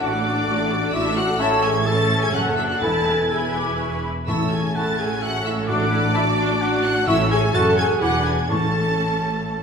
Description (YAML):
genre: quick classical-period movement for symphony orchestra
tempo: 127 BPM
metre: 3/4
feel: uneven beats, rubato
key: A major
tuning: A4 = 441 Hz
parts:
  - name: rich studio violin section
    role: melody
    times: 0.0-9.6 s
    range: D6 to A6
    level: -28 LUFS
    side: left 1 dB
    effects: none
  - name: bright large flute ensemble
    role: second line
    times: 0.0-8.7 s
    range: F#5 to E6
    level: -29 LUFS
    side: left 1 dB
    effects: none
  - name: mellow clarinet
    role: second line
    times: 0.0-8.7 s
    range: C#4 to F#4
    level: -30 LUFS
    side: equal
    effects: none
  - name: rich studio violin section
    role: second line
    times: 0.0-9.6 s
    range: D5 to A5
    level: -28 LUFS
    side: left 1 dB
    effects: none
  - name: warm oboe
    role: second line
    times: 0.0-9.6 s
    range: C#5 to A5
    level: -28 LUFS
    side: right 2 dB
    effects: none
  - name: clear studio viola section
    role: accompaniment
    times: 0.0-9.6 s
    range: A3 to B4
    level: -26 LUFS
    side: right 1 dB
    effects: none
  - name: mellow French horn section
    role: sustained chords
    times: 0.0-9.6 s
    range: D4 to A4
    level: -25 LUFS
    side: left 2 dB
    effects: none
  - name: clear studio double bass section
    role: bass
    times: 0.0-9.6 s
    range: E1 to A1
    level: -29 LUFS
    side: right 2 dB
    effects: none
  - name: rich studio cello section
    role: bass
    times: 0.0-9.6 s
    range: E2 to A2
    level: -27 LUFS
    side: right 3 dB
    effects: none
  - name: timpani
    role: percussion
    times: 2.8-9.2 s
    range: E2 to A2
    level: -28 LUFS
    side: left 2 dB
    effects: none
room: wet recital hall reverb, RT60 1.5 s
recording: recorded in a church or concert hall, faint mains hum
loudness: -18 LUFS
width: side -6 dB against mid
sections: 0.0-9.6 A section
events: none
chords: 0.0 D/A; 1.4 A; 2.3 F#m; 2.8 E; 4.3 A; 5.7 D/A; 7.1 A; 7.5 F#m; 8.0 E7; 8.5 A